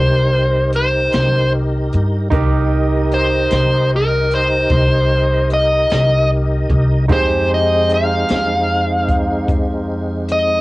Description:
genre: slow blues.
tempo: 50 BPM (dotted quarters).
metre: 12/8.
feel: straight.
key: C minor.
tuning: A4 = 440 Hz.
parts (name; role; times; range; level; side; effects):
dark smooth lead guitar; melody; 0.0-10.6 s; Bb4 to F5; -16 LUFS; left 1 dB; overdrive, cassette tape.
bright concert grand piano; accompaniment; 0.0-10.6 s; Eb4 to D6; -25 LUFS; right 5 dB; cassette tape.
tonewheel organ; sustained chords; 0.0-10.6 s; Ab3 to Eb5; -23 LUFS; equal; slow rotary speaker, overdrive, chorus vibrato, cassette tape.
upright bass; bass; 0.0-10.6 s; C2 to G2; -18 LUFS; equal; none.
jazz brush drum kit; drums; 0.7-10.5 s; hi-hat, kick drum, snare drum; -20 LUFS; equal; none.
room: small room ambience.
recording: home recording on cassette.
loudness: -13 LUFS.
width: side -19 dB against mid.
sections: 0.0-10.6 A section.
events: none.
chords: 0.0 Cm9; 7.1 Fm9.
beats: 1.13 | 2.32 3.52 4.71 5.91 | 7.10 8.30 9.49.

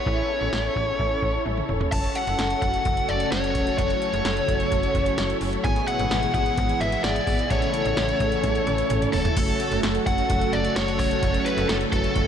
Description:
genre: synth-pop.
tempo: 129 BPM.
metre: 4/4.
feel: straight.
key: F# minor.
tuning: A4 = 440 Hz.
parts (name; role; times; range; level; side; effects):
biting lead guitar; melody; 0.0-12.3 s; A4 to A5; -25 LUFS; left 1 dB; overdrive, analog delay.
mellow synth brass; accompaniment; 0.0-12.3 s; A3 to A4; -29 LUFS; equal; chorus.
slap-like FM bass; bass; 0.1-12.3 s; E1 to A1; -29 LUFS; equal; none.
electro analog drum machine; drums; 0.1-12.3 s; crash cymbal, hi-hat, kick drum, snare drum, toms; -28 LUFS; equal; none.
string machine, full ensemble; sustained chords; 1.9-12.3 s; B2 to A4; -28 LUFS; equal; ensemble chorus.
room: wet huge ambient reverb, RT60 9.2 s.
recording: dreamy mix soaked in reverb.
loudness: -21 LUFS.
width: side -8 dB against mid.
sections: 0.0-1.9 A section; 1.9-9.4 B section; 9.4-12.3 C section.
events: drum fill 1.5-1.9, 8.4-9.4.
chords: 0.1 A; 1.9 F#m; 5.6 E/G#; 7.5 A; 9.4 F#m.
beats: | 0.06 0.53 0.99 1.46 | 1.92 2.39 2.85 3.32 | 3.79 4.25 4.71 5.18 | 5.64 6.11 6.58 7.04 | 7.51 7.97 8.44 8.90 | 9.37 9.83 10.30 10.76 | 11.23 11.69 12.16.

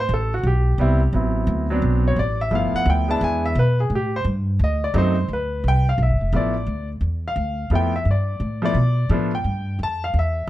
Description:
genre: jazz piano trio.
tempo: 173 BPM.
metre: 4/4.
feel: swing 64% on 8ths.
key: G mixolydian.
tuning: A4 = 438 Hz.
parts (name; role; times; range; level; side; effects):
clear concert grand piano; melody; 0.0-10.5 s; F3 to A5; -22 LUFS; equal; plate reverb.
upright bass; bass; 0.0-10.5 s; F1 to B2; -20 LUFS; equal; none.
room: light reverb.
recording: dark, warm production.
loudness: -18 LUFS.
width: side -15 dB against mid.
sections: 0.0-5.3 A section; 5.3-10.5 A section.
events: grand piano solo 0.0-10.5.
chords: 0.0 Am7; 1.1 D13; 2.5 G13; 3.2 E7; 3.9 Gsus2; 4.6 D7b9; 5.3 G13.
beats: 0.09 0.44 0.78 | 1.13 1.48 1.82 2.17 | 2.52 2.86 3.21 3.56 | 3.90 4.25 4.59 4.94 | 5.29 5.63 5.98 6.33 | 6.67 7.02 7.37 7.71 | 8.06 8.41 8.75 9.10 | 9.45 9.79 10.14 10.48.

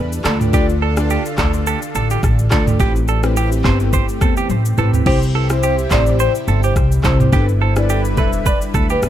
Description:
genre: afrobeats.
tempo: 106 BPM.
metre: 4/4.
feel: swing 55% on 16ths.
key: C major.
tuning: A4 = 441 Hz.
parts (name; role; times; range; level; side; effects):
lush unison pad; sustained chords; 0.0-9.1 s; C3 to B4; -27 LUFS; equal; chorus, phaser, sidechain pumping.
upright bass; bass; 0.0-9.1 s; E1 to E2; -17 LUFS; equal; none.
afro-pop drum kit; drums; 0.1-9.1 s; crash cymbal, handclaps, kick drum, rim click, shaker, toms; -19 LUFS; equal; none.
glassy digital keys; accompaniment; 0.2-8.4 s; C4 to D5; -23 LUFS; left 3 dB; chorus, analog delay.
direct-recorded clean electric guitar; riff; 0.3-9.0 s; G4 to C5; -23 LUFS; right 8 dB; analog delay.
soft octave-layered synth lead; melody; 5.5-9.0 s; B4 to E5; -24 LUFS; left 2 dB; chorus, phaser, analog delay.
room: little or no reverb.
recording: echo-heavy mix.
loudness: -13 LUFS.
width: side -11 dB against mid.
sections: 0.0-9.1 A section.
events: drum fill 4.5-5.1.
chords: 0.2 Dm; 2.8 Am7; 5.1 C; 7.3 G6.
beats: | 0.53 1.10 1.67 2.23 | 2.80 3.36 3.93 4.50 | 5.06 5.63 6.19 6.76 | 7.33 7.89 8.46 9.02.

